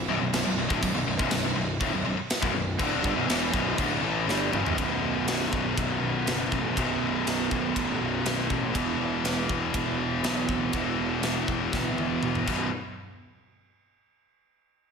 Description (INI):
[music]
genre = heavy metal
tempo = 121 BPM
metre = 4/4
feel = straight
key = B minor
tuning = A4 = 440 Hz
[part]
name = distorted electric guitar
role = riff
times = 0.0-12.7 s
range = B1 to A3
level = -31 LUFS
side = right 9 dB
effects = distortion
[part]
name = scooped high-gain guitar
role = riff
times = 0.0-12.7 s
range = B1 to A3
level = -28 LUFS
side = left 8 dB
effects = distortion, slapback echo
[part]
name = fuzz picked electric bass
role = bass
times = 0.0-12.7 s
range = B0 to B1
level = -33 LUFS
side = right 1 dB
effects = overdrive
[part]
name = tight metal drum kit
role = drums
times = 0.3-12.6 s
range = crash cymbal, kick drum, ride cymbal, snare drum, toms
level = -31 LUFS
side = equal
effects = none
[sound]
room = moderate recital hall reverb, RT60 1.4 s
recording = big arena sound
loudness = -24 LUFS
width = side -6 dB against mid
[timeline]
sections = 0.0-4.8 A section; 4.8-12.7 B section; 12.7-14.7 C section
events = drum fill 4.3-4.8, 11.7-12.7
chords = 0.0 Bm; 4.8 B5; 8.7 E5; 12.5 B5; 12.7 N.C.